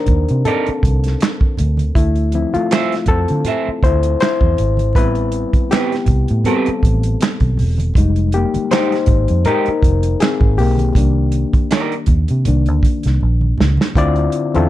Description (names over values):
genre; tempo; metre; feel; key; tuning
R&B, neo-soul; 80 BPM; 4/4; swing 55% on 16ths; D minor; A4 = 440 Hz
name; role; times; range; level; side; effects
overdriven reed electric piano; accompaniment; 0.0-14.7 s; D3 to D5; -19 LUFS; left 4 dB; none
vintage muted fingered electric bass; bass; 0.1-14.7 s; E1 to D3; -16 LUFS; right 1 dB; none
warm soul drum kit; drums; 0.1-14.7 s; handclaps, hi-hat, kick drum, snare drum; -17 LUFS; right 1 dB; none
congas; percussion; 0.1-14.5 s; none; -26 LUFS; right 4 dB; none
electric guitar through a small old amp; second line; 0.5-11.9 s; Ab3 to E5; -20 LUFS; right 6 dB; none
room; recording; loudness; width
light reverb; dark, warm production; -13 LUFS; side -14 dB against mid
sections
0.0-14.0 A section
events
reed electric piano solo 0.0-14.0; drum fill 13.2-14.0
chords
0.0 Cm9; 2.0 Dm9; 5.0 Am9; 8.0 Fm9; 11.0 Cm9; 14.0 Dm9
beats
0.45 1.20 | 1.95 2.70 3.45 4.20 | 4.95 5.70 6.45 7.20 | 7.95 8.70 9.45 10.20 | 10.95 11.70 12.45 13.20 | 13.95